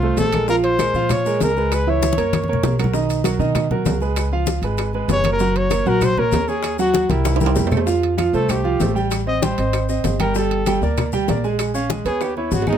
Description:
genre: Afro-Cuban jazz.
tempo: 194 BPM.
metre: 4/4.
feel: straight.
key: Db major.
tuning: A4 = 440 Hz.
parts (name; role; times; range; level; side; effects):
warm trumpet; melody; 0.0-2.8, 5.1-12.8 s; Eb4 to Eb5; -22 LUFS; left 2 dB; plate reverb.
clear concert grand piano; accompaniment; 0.0-12.8 s; Eb3 to Ab5; -21 LUFS; right 4 dB; none.
upright bass; bass; 0.0-12.8 s; Gb1 to Cb3; -23 LUFS; equal; none.
bongos; percussion; 0.0-12.8 s; none; -29 LUFS; left 8 dB; none.
congas; percussion; 0.0-12.8 s; none; -25 LUFS; left 4 dB; none.
maracas; percussion; 0.2-12.8 s; none; -36 LUFS; left 7 dB; none.
timbales; percussion; 0.2-12.8 s; none; -27 LUFS; right 6 dB; none.
claves; percussion; 0.3-12.8 s; none; -35 LUFS; right 1 dB; none.
room: light reverb.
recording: close, detailed microphones.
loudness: -17 LUFS.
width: side -9 dB against mid.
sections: 0.0-7.9 A section; 7.9-12.8 B section.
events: drum fill 2.0-2.9, 7.1-7.9, 12.2-12.8; trumpet solo 7.9-12.8.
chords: 0.5 Bbm9; 1.7 Dbm7; 2.3 Gb; 2.9 Cbmaj7; 4.2 Db7; 5.4 Gb6; 6.6 Ebm7; 7.3 C6; 7.9 Fadd9; 9.1 Am7b5; 9.7 Ab; 10.4 Gmadd9; 11.6 Bbm7; 12.2 Abmadd11.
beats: 0.18 | 0.49 0.80 1.10 1.41 | 1.72 2.02 2.33 2.63 | 2.94 3.25 3.56 3.86 | 4.17 4.48 4.79 5.09 | 5.40 5.71 6.02 6.33 | 6.64 6.95 7.26 7.57 | 7.88 8.19 8.50 8.81 | 9.12 9.43 9.74 10.04 | 10.36 10.66 10.97 11.28 | 11.59 11.90 12.21 12.52.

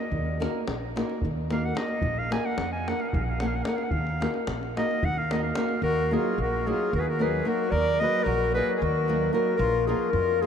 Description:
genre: balkan folk, Balkan wedding band.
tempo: 221 BPM (eighths).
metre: 7/8.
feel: straight.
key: Eb harmonic minor.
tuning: A4 = 440 Hz.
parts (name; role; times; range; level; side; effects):
clear clarinet; melody; 0.0-10.5 s; Ab4 to Ab5; -28 LUFS; left 1 dB; none.
flamenco guitar; accompaniment; 0.0-10.5 s; F3 to Bb4; -30 LUFS; equal; none.
upright bass; bass; 0.1-10.5 s; Bb1 to F2; -30 LUFS; right 1 dB; none.
davul; percussion; 0.1-5.8 s; none; -34 LUFS; left 1 dB; none.
accordion; second line; 5.8-10.5 s; F4 to Cb5; -32 LUFS; left 3 dB; none.
room: wet huge ambient reverb, RT60 8.9 s.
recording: in a vast, echoing space.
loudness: -24 LUFS.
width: side -7 dB against mid.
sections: 0.0-5.8 A section; 5.8-10.5 B section.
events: clarinet solo 0.0-5.8.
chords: 0.0 Ebm; 2.0 Bb; 3.9 Ebm; 9.6 Bb.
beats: | 0.10 0.37 0.64 0.92 1.19 1.46 1.74 | 2.01 2.28 2.55 2.83 3.10 3.37 3.64 | 3.91 4.19 4.46 4.73 5.00 5.27 5.54 | 5.81 6.08 6.35 6.62 6.89 7.16 7.43 | 7.70 7.97 8.24 8.51 8.78 9.05 9.32 | 9.59 9.85 10.12 10.39.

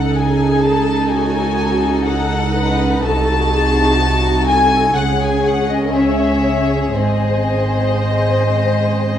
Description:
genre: classical, slow romantic movement for string orchestra.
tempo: 59-64 BPM.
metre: 4/4.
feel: rubato.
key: unclear.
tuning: A4 = 440 Hz.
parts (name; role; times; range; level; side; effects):
warm symphonic violin section; melody; 0.0-9.2 s; D#5 to A5; -19 LUFS; left 4 dB; none.
warm symphonic violin section; second line; 0.0-9.2 s; B#3 to A4; -22 LUFS; left 3 dB; none.
dark symphonic viola section; accompaniment; 0.0-9.2 s; F#4 to C#5; -21 LUFS; equal; none.
warm symphonic cello section; bass; 0.0-9.2 s; G#2 to C#3; -20 LUFS; right 2 dB; none.
warm symphonic double bass section; bass; 0.0-9.2 s; G#1 to C#2; -20 LUFS; right 3 dB; none.
room: moderate scoring stage reverb, RT60 1.5 s.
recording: dark, warm production.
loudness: -13 LUFS.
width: side -10 dB against mid.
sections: 0.0-9.2 A section.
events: none.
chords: 0.0 D#m7b5/C#; 3.0 Cdim7; 5.0 C#m; 7.0 G#.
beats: 0.18 1.12 2.08 | 3.04 4.00 4.96 5.95 | 6.96 7.98 8.97.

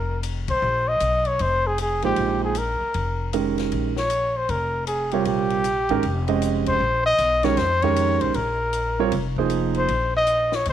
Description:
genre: modal jazz.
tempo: 156 BPM.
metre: 4/4.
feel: swing 64% on 8ths.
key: Bb dorian.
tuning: A4 = 440 Hz.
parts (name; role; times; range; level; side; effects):
breathy trumpet; melody; 0.0-10.7 s; G4 to Eb5; -22 LUFS; left 1 dB; none.
upright bass; bass; 0.0-10.7 s; F1 to F2; -27 LUFS; left 2 dB; none.
compact cocktail drum kit; drums; 0.2-10.7 s; hi-hat, kick drum, ride cymbal, snare drum; -36 LUFS; left 11 dB; none.
warm grand piano; accompaniment; 2.0-9.9 s; C3 to Eb5; -23 LUFS; right 9 dB; none.
room: light reverb, small room reverb.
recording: 1960s-style stereo with parts hard left and right.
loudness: -20 LUFS.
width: side -10 dB against mid.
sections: 0.0-10.7 A section.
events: band accent 0.4, 6.6.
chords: 0.0 Bb13sus4.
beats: 0.24 | 0.63 1.01 1.40 1.79 | 2.17 2.56 2.95 3.33 | 3.72 4.11 4.49 4.88 | 5.26 5.65 6.04 6.42 | 6.81 7.19 7.58 7.96 | 8.35 8.73 9.12 9.51 | 9.89 10.28 10.66.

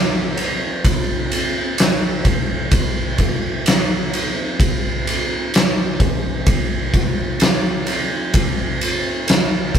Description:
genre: metal.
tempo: 64 BPM.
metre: 4/4.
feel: straight.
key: none.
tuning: none.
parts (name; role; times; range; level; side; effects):
oversized low-tuned drum kit; drums; 0.4-9.8 s; kick drum, ride cymbal, snare drum; -16 LUFS; equal; none.
room: light reverb.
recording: band playing live in one room.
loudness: -16 LUFS.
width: side -8 dB against mid.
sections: 0.0-9.8 A section.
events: none.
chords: none.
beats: | 0.84 1.77 2.71 3.64 | 4.58 5.52 6.45 7.39 | 8.33 9.27.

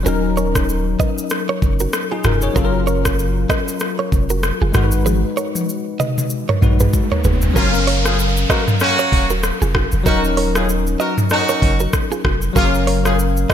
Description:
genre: afrobeats.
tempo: 96 BPM.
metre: 4/4.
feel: swing 58% on 16ths.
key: unclear.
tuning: A4 = 440 Hz.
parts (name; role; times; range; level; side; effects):
bell-like tine electric piano; accompaniment; 0.0-13.5 s; F#3 to E#5; -22 LUFS; left 5 dB; analog chorus.
punchy sub bass; bass; 0.0-13.5 s; D#1 to A#1; -19 LUFS; equal; none.
direct-recorded clean electric guitar; riff; 0.1-13.5 s; D#4 to D#5; -25 LUFS; right 6 dB; ping-pong delay.
afro-pop drum kit; drums; 0.1-13.5 s; hi-hat, kick drum, rim click, shaker, toms; -20 LUFS; equal; none.
riser and downlifter; sound effects; 6.3-12.6 s; none; -26 LUFS; right 1 dB; none.
warm horn section; second line; 7.6-13.5 s; A#3 to A#4; -21 LUFS; right 1 dB; none.
room: light reverb.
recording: bright 1980s-style digital production.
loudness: -15 LUFS.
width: side -9 dB against mid.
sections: 0.0-7.6 A section; 7.6-13.5 B section.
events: drum fill 5.1-7.6; riser 6.3-7.6.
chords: 0.0 D#m7; 2.6 F#maj7; 7.6 D#m7.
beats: | 0.06 0.68 1.31 1.93 | 2.56 3.18 3.81 4.43 | 5.06 5.68 6.31 6.93 | 7.56 8.18 8.81 9.43 | 10.06 10.68 11.31 11.93 | 12.56 13.18.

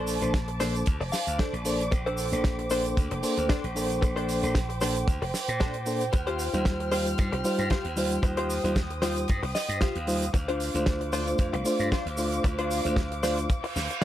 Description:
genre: nu-disco, nu disco.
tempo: 114 BPM.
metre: 4/4.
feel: swing 54% on 16ths.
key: Bb major.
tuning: A4 = 437 Hz.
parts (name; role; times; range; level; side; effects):
mellow reed electric piano; accompaniment; 0.0-13.5 s; G3 to C5; -29 LUFS; equal; fast tremolo, slapback echo.
muted studio violin section; sustained chords; 0.0-14.0 s; C5 to F6; -34 LUFS; right 1 dB; sidechain pumping.
direct-recorded clean electric guitar; riff; 0.0-14.0 s; D4 to F5; -32 LUFS; left 2 dB; lush chorus.
slap bass; bass; 0.0-13.9 s; F1 to Bb2; -32 LUFS; equal; none.
damped 70s drum kit; drums; 0.1-14.0 s; hi-hat, snare drum; -34 LUFS; right 2 dB; none.
tube shaker; percussion; 0.1-14.0 s; none; -41 LUFS; right 1 dB; none.
kick drum; drums; 0.3-13.6 s; none; -26 LUFS; equal; none.
reverse cymbal; sound effects; 13.6-14.0 s; none; -34 LUFS; right 4 dB; none.
room: small room ambience.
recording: none.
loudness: -25 LUFS.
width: side -12 dB against mid.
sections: 0.0-14.0 A section.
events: clean electric guitar fill 0.9-1.9, 9.3-10.3; reverse cymbal 13.6-14.0.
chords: 0.0 Bbmaj9; 6.1 Eb69; 10.3 Dm7.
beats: 0.34 0.87 1.39 | 1.92 2.44 2.97 3.50 | 4.02 4.55 5.08 5.60 | 6.13 6.66 7.18 7.71 | 8.23 8.76 9.29 9.81 | 10.34 10.87 11.39 11.92 | 12.45 12.97 13.50 14.02.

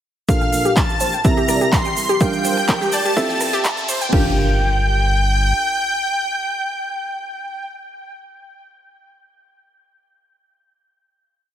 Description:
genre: progressive house.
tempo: 125 BPM.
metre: 4/4.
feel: straight.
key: G dorian.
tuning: A4 = 440 Hz.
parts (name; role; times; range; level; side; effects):
soft supersaw; melody; 0.3-7.6 s; F5 to C6; -22 LUFS; equal; sidechain pumping, digital delay.
soft supersaw; second line; 0.3-7.6 s; F6 to C7; -28 LUFS; equal; sidechain pumping, dub echo.
wide unison pluck; arpeggios; 0.3-4.3 s; G4 to G5; -23 LUFS; equal; sidechain pumping, dub echo.
deep mellow chord stab; stabs; 0.3-7.6 s; Bb2 to F5; -23 LUFS; right 3 dB; chorus, sidechain pumping, dub echo.
big-room dance drum kit; drums; 0.3-4.2 s; crash cymbal, handclaps, hi-hat, rim click; -25 LUFS; equal; overdrive, sidechain pumping on hats, high-pass filter on hats, high-pass filter on snare, sidechain pumping on cymbals, high-pass filter on cymbals, high-pass filter on room.
electronic kick drum; drums; 0.3-4.2 s; none; -19 LUFS; equal; overdrive.
egg shaker; percussion; 0.3-4.1 s; none; -29 LUFS; right 3 dB; none.
riser and impact; sound effects; 1.9-7.7 s; none; -29 LUFS; left 1 dB; none.
saturated sub bass; bass; 0.5-5.5 s; F1 to C2; -20 LUFS; equal; sidechain pumping, high-pass filter.
room: light reverb.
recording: high-pass filter.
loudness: -16 LUFS.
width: side -10 dB against mid.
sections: 0.3-4.1 build; 4.1-8.0 final chord.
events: build-up 0.3-4.1; filter sweep on synth pluck 0.3-4.1; filter sweep 0.3-4.1; riser 1.9-4.1.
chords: 0.3 Bbmaj7; 1.2 C7; 2.2 Gm7; 3.2 Fmaj7; 4.1 Gm7.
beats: | 0.29 0.77 1.25 1.73 | 2.21 2.69 3.17 3.65 | 4.13 4.61 5.09 5.57 | 6.05 6.53 7.01 7.49.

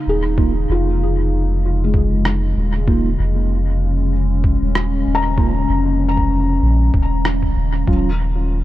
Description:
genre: ambient dub.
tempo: 96 BPM.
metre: 4/4.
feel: swing 56% on 16ths.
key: unclear.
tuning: A4 = 440 Hz.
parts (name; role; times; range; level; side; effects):
warbly tape-like pad; sustained chords; 0.0-8.6 s; Db3 to F5; -22 LUFS; left 3 dB; chorus, built-in reverb.
felt-muted upright piano; arpeggios; 0.1-7.9 s; Ab3 to Bb5; -26 LUFS; left 2 dB; low-pass filter, tape echo.
soft dub sub bass; bass; 0.1-8.6 s; Eb1 to Bb1; -18 LUFS; equal; none.
mellow tine electric piano; stabs; 0.4-8.1 s; Gb3 to F4; -25 LUFS; right 4 dB; phaser, dub echo.
electronic kick drum; drums; 0.4-8.0 s; none; -18 LUFS; equal; overdrive.
electronic rim click; drums; 2.3-7.4 s; none; -25 LUFS; equal; overdrive, dub echo.
room: little or no reverb.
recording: none.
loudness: -15 LUFS.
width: side -15 dB against mid.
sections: 0.0-8.6 A section.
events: filter sweep on felt piano 0.0-8.6.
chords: 0.0 Db6/Eb; 7.9 Ebm7.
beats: | 0.38 1.00 1.63 2.25 | 2.88 3.50 4.13 4.75 | 5.38 6.00 6.63 7.25 | 7.88 8.50.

